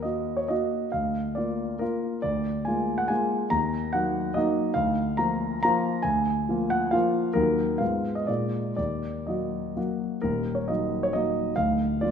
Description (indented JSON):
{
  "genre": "classical, romantic triple-time dance for piano with dotted rhythms",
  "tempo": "116-151 BPM",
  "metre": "3/4",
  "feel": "rubato",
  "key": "Eb minor",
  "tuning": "A4 = 440 Hz",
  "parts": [
    { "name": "warm concert grand piano", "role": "solo", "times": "0.0-12.1 s", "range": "D1 to Bb5", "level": "-24 LUFS", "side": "equal", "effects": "none" }
  ],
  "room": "wet recital hall reverb, RT60 1.5 s",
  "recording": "minimal, uncompressed stereo recording",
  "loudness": "-24 LUFS",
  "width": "side -7 dB against mid",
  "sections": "0.0-10.2 A section; 10.2-12.1 A section",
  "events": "none",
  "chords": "0.0 Ebm; 0.9 Bb/D; 2.2 Bb7/D; 3.5 Ebm; 4.8 Bb/D; 7.4 Ebm; 7.8 Fdim/Ab; 8.3 Bb7; 8.8 Ebm; 11.6 Bb/D"
}